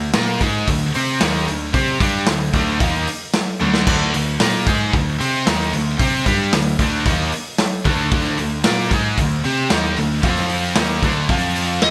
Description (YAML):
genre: hard rock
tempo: 113 BPM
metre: 4/4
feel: straight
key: unclear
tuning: A4 = 445 Hz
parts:
  - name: distorted electric guitar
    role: riff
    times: 0.0-11.9 s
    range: D3 to C5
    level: -27 LUFS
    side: equal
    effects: distortion
  - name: heavy high-gain guitar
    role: riff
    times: 0.0-11.9 s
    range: D3 to C5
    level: -27 LUFS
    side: equal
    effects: distortion
  - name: tight distorted guitar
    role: riff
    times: 0.0-11.9 s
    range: D3 to C5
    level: -26 LUFS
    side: equal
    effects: distortion
  - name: growling picked electric bass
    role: bass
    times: 0.0-11.9 s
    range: D2 to C3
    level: -25 LUFS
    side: equal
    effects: overdrive
  - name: raw garage drum kit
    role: drums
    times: 0.1-11.9 s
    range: crash cymbal, hi-hat, kick drum, snare drum, toms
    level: -22 LUFS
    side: equal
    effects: gated reverb
  - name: biting lead guitar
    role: melody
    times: 11.8-11.9 s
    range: Eb5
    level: -17 LUFS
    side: equal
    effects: overdrive
room: light reverb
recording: bright 1980s-style digital production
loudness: -18 LUFS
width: mono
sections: 0.0-11.9 A section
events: drum fill 3.6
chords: 0.0 Dm; 10.2 F5; 10.8 D5; 11.3 F5